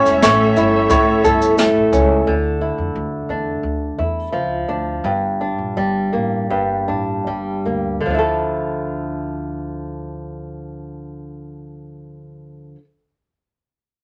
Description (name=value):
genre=acoustic pop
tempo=74-89 BPM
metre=4/4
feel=straight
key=D harmonic minor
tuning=A4 = 439 Hz
part: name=bright upright piano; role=melody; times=0.0-1.5 s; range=C#5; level=-20 LUFS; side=equal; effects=none
part: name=flamenco guitar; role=accompaniment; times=0.0-12.8 s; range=G2 to A4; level=-21 LUFS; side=equal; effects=none
part: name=muted studio string section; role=sustained chords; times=0.0-2.2 s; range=A3 to E5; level=-25 LUFS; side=equal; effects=none
part: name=upright bass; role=bass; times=0.1-12.7 s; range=E1 to F2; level=-29 LUFS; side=equal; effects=none
part: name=jazz brush drum kit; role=drums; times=0.1-2.1 s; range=kick drum, shaker, snare drum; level=-24 LUFS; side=equal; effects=none
room=moderate studio reverb, RT60 0.7 s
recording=none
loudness=-19 LUFS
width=mono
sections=0.0-2.3 A section; 2.3-8.1 B section; 8.1-11.3 C section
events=slowing down 2.3-8.1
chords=0.0 A; 2.3 Dmadd9; 5.0 Gm; 8.1 Dmadd9